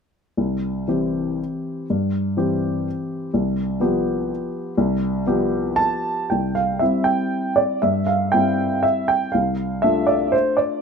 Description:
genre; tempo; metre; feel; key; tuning
classical, piano waltz; 110-132 BPM; 3/4; rubato; C major; A4 = 440 Hz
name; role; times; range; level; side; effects
warm upright piano; solo; 0.4-10.8 s; C2 to A5; -19 LUFS; equal; none
room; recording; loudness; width
light reverb; close, detailed microphones; -19 LUFS; side -6 dB against mid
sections
0.4-6.3 A section; 6.3-10.8 B section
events
none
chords
0.4 C; 3.3 G7/C; 6.3 C; 9.3 Dm7/C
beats
| 0.38 0.87 1.39 | 1.89 2.37 2.86 | 3.34 3.81 4.30 | 4.78 5.26 5.78 | 6.31 6.81 7.32 | 7.82 8.32 8.83 | 9.33 9.82 10.33

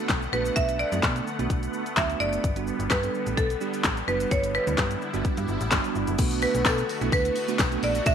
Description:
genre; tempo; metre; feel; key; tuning
dance-pop; 128 BPM; 4/4; straight; B minor; A4 = 441 Hz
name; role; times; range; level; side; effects
marimba with hard mallets; melody; 0.0-8.1 s; A4 to E5; -27 LUFS; right 1 dB; slapback echo
bell-like tine electric piano; accompaniment; 0.0-8.1 s; G3 to A4; -31 LUFS; right 9 dB; sidechain pumping
filtered supersaw swell; sustained chords; 0.0-8.1 s; D3 to F#5; -34 LUFS; left 1 dB; sidechain pumping
slap-like FM bass; bass; 0.1-8.1 s; F#1 to B2; -30 LUFS; left 1 dB; sidechain pumping
pop drum kit; drums; 0.1-8.1 s; crash cymbal, handclaps, hi-hat, kick drum, shaker, snare drum; -26 LUFS; left 1 dB; none
tambourine; percussion; 6.2-8.1 s; none; -43 LUFS; left 14 dB; none
room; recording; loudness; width
moderate echo chamber reverb, RT60 1.6 s; 1960s-style stereo with parts hard left and right; -23 LUFS; side -8 dB against mid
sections
0.0-6.2 A section; 6.2-8.1 B section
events
none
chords
0.0 Bm7; 2.4 Gmaj7; 6.2 Bm7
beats
0.10 | 0.56 1.03 1.50 1.97 | 2.44 2.91 3.38 3.85 | 4.31 4.78 5.25 5.72 | 6.19 6.66 7.13 7.59 | 8.06

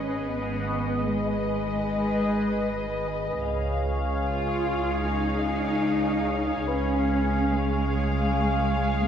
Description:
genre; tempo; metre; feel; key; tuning
cinematic, suspense film score; free time; none; none; unclear; A4 = 439 Hz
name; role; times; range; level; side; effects
rich symphonic violin section; second line; 0.0-9.1 s; G#4 to E#5; -32 LUFS; left 3 dB; none
bubbling stepped-filter texture; sustained chords; 0.0-9.1 s; G#4 to E#5; -30 LUFS; left 1 dB; chorus, built-in reverb
rich studio cello section; bass; 0.0-9.1 s; G#3 to E#4; -28 LUFS; equal; none
rich symphonic double bass section; bass; 0.0-9.1 s; G#1 to C#2; -28 LUFS; right 2 dB; none
celesta; texture; 0.0-9.1 s; B4 to F#6; -39 LUFS; left 7 dB; none
room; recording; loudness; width
wet church reverb, RT60 3.1 s; dark, warm production; -24 LUFS; side -8 dB against mid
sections
0.0-9.1 A section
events
none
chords
0.0 G#m; 3.5 C#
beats
free time

